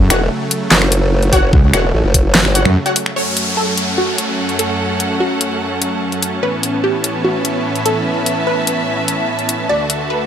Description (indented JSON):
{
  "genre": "heavy wobble dubstep",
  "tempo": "147 BPM",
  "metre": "4/4",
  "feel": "half-time",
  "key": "F# minor",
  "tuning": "A4 = 440 Hz",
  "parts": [
    { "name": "supersaw chords", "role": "sustained chords", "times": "0.0-10.3 s", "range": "D2 to F#4", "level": "-20 LUFS", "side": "right 1 dB", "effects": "sidechain pumping" },
    { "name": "wobble bass", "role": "bass", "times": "0.0-2.8 s", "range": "C#2 to F#2", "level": "-12 LUFS", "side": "equal", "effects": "chorus, overdrive" },
    { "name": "orchestra-hit-like synth stab", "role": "stabs", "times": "0.1-2.9 s", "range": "F#4 to F#5", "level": "-19 LUFS", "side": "left 2 dB", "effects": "built-in reverb, ping-pong delay" },
    { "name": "formant-sweep wobble bass", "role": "bass", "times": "0.1-2.6 s", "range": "E1 to A1", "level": "-14 LUFS", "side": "equal", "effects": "chorus, overdrive" },
    { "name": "dubstep drum kit", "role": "drums", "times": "0.1-10.0 s", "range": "finger snaps, handclaps, hi-hat, snare drum", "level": "-14 LUFS", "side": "left 1 dB", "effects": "overdrive" },
    { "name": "electronic kick drum", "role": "drums", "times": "1.3-2.2 s", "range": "none", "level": "-13 LUFS", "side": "equal", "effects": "overdrive" },
    { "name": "wide unison pluck", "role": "melody", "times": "3.2-10.3 s", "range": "F#4 to D5", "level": "-20 LUFS", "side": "equal", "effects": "ping-pong delay" },
    { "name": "downlifter", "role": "sound effects", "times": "3.2-6.4 s", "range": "none", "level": "-22 LUFS", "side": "equal", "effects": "none" },
    { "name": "rich studio string section", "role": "texture", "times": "3.2-10.3 s", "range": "C#4 to A5", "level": "-21 LUFS", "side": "right 1 dB", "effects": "sidechain pumping" }
  ],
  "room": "light reverb",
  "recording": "none",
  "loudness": "-13 LUFS",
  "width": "side -9 dB against mid",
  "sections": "0.0-3.2 A section; 3.2-10.3 B section",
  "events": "drop 0.0-3.2; break 2.8-3.2",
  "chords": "0.0 F#5; 3.2 F#m; 6.4 Aadd9; 9.7 D"
}